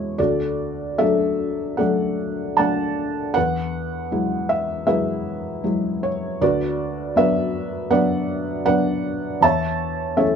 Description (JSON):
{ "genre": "classical, lyrical solo piano", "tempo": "78 BPM", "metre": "4/4", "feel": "uneven beats, rubato", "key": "unclear", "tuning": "A4 = 437 Hz", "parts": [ { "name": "felt-muted upright piano", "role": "solo", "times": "0.0-10.4 s", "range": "D2 to A5", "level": "-19 LUFS", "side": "equal", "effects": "none" } ], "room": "light reverb", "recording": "none", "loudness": "-19 LUFS", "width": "side -7 dB against mid", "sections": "0.2-10.4 A section", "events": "none", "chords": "0.2 D; 3.4 Eadd9; 6.4 Bm/D; 9.4 A/E" }